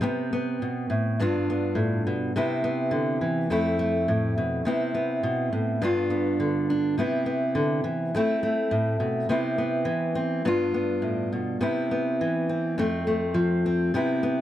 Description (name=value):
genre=highlife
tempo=104 BPM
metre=4/4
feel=straight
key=C major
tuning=A4 = 440 Hz
part: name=fingerpicked steel-string acoustic guitar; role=solo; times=0.0-14.4 s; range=F2 to F4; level=-23 LUFS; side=equal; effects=none
room=moderate studio reverb, RT60 0.8 s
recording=none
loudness=-23 LUFS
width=side -12 dB against mid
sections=0.0-14.4 A section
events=none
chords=0.0 Cmaj7(no3); 1.2 G7; 2.3 Cmaj7; 3.5 Fmaj7; 4.7 Cmaj7; 5.8 G7; 7.0 Cmaj7; 8.1 Fmaj7 (rootless); 9.3 Cmaj7; 10.5 G7; 11.6 Cmaj7; 12.8 F